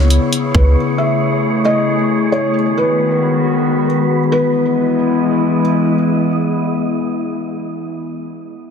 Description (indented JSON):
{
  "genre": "hip hop, atmospheric cloud-rap",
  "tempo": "135 BPM",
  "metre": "4/4",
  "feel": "half-time",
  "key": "E major",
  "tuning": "A4 = 440 Hz",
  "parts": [
    { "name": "felt-muted upright piano", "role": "melody", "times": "0.0-5.6 s", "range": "B4 to E5", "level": "-20 LUFS", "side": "right 1 dB", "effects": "tape echo" },
    { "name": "warbly tape-like pad", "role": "sustained chords", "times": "0.0-8.1 s", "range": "C#3 to G#4", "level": "-16 LUFS", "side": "left 2 dB", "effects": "chorus, built-in reverb, sidechain pumping" },
    { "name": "soft 808-style bass", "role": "bass", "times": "0.0-0.8 s", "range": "C#2", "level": "-11 LUFS", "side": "equal", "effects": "none" },
    { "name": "wind-like tuned noise texture", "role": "texture", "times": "0.0-8.1 s", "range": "G#3 to D#5", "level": "-23 LUFS", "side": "equal", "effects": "built-in reverb" },
    { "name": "trap drum kit", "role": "drums", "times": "0.1-0.6 s", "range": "hi-hat, kick drum", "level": "-17 LUFS", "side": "equal", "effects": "none" }
  ],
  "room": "light reverb",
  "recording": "dense, heavily limited modern master",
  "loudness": "-13 LUFS",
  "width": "side -6 dB against mid",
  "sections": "0.0-4.3 A section; 4.3-7.9 B section",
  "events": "none",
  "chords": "0.0 C#m7; 0.8 Amaj7; 2.5 G#m7; 4.3 Emaj7"
}